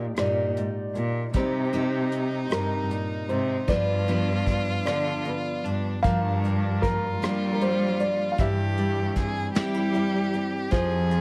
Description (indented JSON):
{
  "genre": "acoustic folk-pop ballad",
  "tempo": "51 BPM (dotted quarters)",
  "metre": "6/8",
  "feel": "straight",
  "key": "C minor",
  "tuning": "A4 = 440 Hz",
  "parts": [
    { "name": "felt-muted upright piano", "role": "melody", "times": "0.0-11.2 s", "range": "Eb4 to F5", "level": "-32 LUFS", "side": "equal", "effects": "plate reverb" },
    { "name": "nylon-string guitar", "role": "accompaniment", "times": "0.0-11.2 s", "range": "G2 to B4", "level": "-35 LUFS", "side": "equal", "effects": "none" },
    { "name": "picked steel-string acoustic guitar", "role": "arpeggios", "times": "0.0-11.2 s", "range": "E3 to G4", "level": "-35 LUFS", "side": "equal", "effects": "none" },
    { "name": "warm cello", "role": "bass", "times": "0.0-11.2 s", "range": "F2 to G3", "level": "-30 LUFS", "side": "equal", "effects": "none" },
    { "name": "soft brush drum kit", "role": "drums", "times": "0.2-11.2 s", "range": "hi-hat, kick drum, rim click, snare drum", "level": "-29 LUFS", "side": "equal", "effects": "none" },
    { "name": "rich violin", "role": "second line", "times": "1.4-11.2 s", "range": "D4 to Ab4", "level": "-36 LUFS", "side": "equal", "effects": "none" }
  ],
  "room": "light reverb",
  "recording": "none",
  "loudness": "-26 LUFS",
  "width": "mono",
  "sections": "0.0-6.0 A section; 6.0-11.2 B section",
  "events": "none",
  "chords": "0.0 Eb; 1.3 Cm; 3.7 G7; 6.0 Gm7; 8.4 C/G"
}